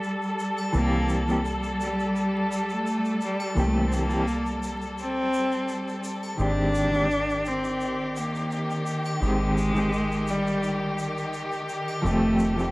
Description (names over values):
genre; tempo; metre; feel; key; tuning
trip hop; 85 BPM; 4/4; straight; unclear; A4 = 440 Hz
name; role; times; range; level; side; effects
rich studio string section; sustained chords; 0.0-12.7 s; Eb3 to A4; -29 LUFS; equal; low-pass filter
deep dub fingered electric bass; bass; 0.0-12.7 s; F1 to C2; -30 LUFS; equal; none
tube shaker and triangle; percussion; 0.0-12.7 s; none; -45 LUFS; left 1 dB; none
mellow electric guitar; accompaniment; 0.7-12.7 s; Eb3 to G4; -28 LUFS; equal; tremolo, vintage 12-bit sampler grit
clear cello; melody; 0.8-12.7 s; G3 to D4; -27 LUFS; equal; dub echo
room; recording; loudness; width
light reverb, small room ambience; worn, warbling old tape, cassette tape, vinyl crackle, warbly pitch drift; -23 LUFS; side -22 dB against mid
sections
0.0-12.7 A section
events
none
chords
0.0 Gsus2; 0.7 C7; 6.4 Abmaj7; 12.0 Fadd9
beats
0.04 | 0.75 1.45 2.16 2.87 | 3.57 4.28 4.98 5.69 | 6.39 7.10 7.81 8.51 | 9.22 9.92 10.63 11.34 | 12.04